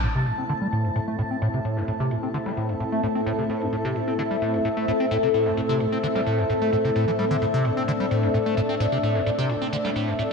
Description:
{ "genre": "acid house", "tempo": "130 BPM", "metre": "4/4", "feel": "straight", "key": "A minor", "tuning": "A4 = 440 Hz", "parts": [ { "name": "lush unison pad", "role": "sustained chords", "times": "0.0-10.3 s", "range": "A2 to E4", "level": "-28 LUFS", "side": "left 1 dB", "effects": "chorus" }, { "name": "liquid acid bass", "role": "riff", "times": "0.0-10.3 s", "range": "G2 to C4", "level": "-26 LUFS", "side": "equal", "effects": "phaser, overdrive, lush chorus, cassette tape, digital delay" }, { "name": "dusty soul sampler-style drum kit", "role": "drums", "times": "0.0-10.3 s", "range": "hi-hat, snare drum", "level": "-44 LUFS", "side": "equal", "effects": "high-pass filter on hats, low-pass filter on hats, high-pass filter on snare, low-pass filter on snare, high-pass filter on room, low-pass filter on room, gated reverb" }, { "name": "granular cloud pad", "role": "texture", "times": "0.0-10.3 s", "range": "C4 to A5", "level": "-26 LUFS", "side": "left 2 dB", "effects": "built-in reverb, wide subtle chorus" } ], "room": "wet lush hall reverb, RT60 2.0 s", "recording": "bright 1980s-style digital production", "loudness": "-22 LUFS", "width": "side -5 dB against mid", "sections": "0.0-10.3 A section", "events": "filter sweep on analog synth pad 0.0-10.3", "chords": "0.0 Am", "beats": "| 0.03 0.50 0.96 1.42 | 1.88 2.34 2.80 3.27 | 3.73 4.19 4.65 5.11 | 5.57 6.03 6.50 6.96 | 7.42 7.88 8.34 8.80 | 9.27 9.73 10.19" }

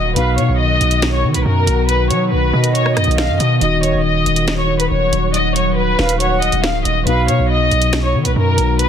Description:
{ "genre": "hip hop, drill", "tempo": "139 BPM", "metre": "4/4", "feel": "half-time", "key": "unclear", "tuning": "A4 = 438 Hz", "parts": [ { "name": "warm studio violin section", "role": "melody", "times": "0.0-8.9 s", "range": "A#4 to F5", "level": "-18 LUFS", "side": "left 2 dB", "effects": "low-pass filter" }, { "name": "mellow tine electric piano", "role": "accompaniment", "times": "0.0-8.9 s", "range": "B2 to Gb4", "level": "-21 LUFS", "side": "left 1 dB", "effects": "medium stereo tremolo, low-pass filter" }, { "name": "deep dark ambient pad", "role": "sustained chords", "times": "0.0-8.9 s", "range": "Eb3 to Gb4", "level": "-23 LUFS", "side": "equal", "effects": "chorus, built-in reverb" }, { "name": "distorted 808-style bass", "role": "bass", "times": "0.0-8.9 s", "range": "Db1 to F#3", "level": "-18 LUFS", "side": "equal", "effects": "distortion" }, { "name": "mellow concert flute", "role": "second line", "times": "0.2-7.5 s", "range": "Eb5 to Gb5", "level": "-24 LUFS", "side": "right 5 dB", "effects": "ping-pong delay" }, { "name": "drill drum kit", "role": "drums", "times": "0.2-8.9 s", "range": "hi-hat, rim click, snare drum", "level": "-22 LUFS", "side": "right 1 dB", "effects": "none" } ], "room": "digital ambience", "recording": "dense, heavily limited modern master", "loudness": "-13 LUFS", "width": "side -8 dB against mid", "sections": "0.0-8.9 A section", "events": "none", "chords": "0.2 B; 3.6 Ebm; 7.1 Bmaj7", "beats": "| 0.16 0.59 1.02 1.46 | 1.89 2.32 2.75 3.18 | 3.61 4.05 4.48 4.91 | 5.34 5.77 6.20 6.64 | 7.07 7.50 7.93 8.36 | 8.79" }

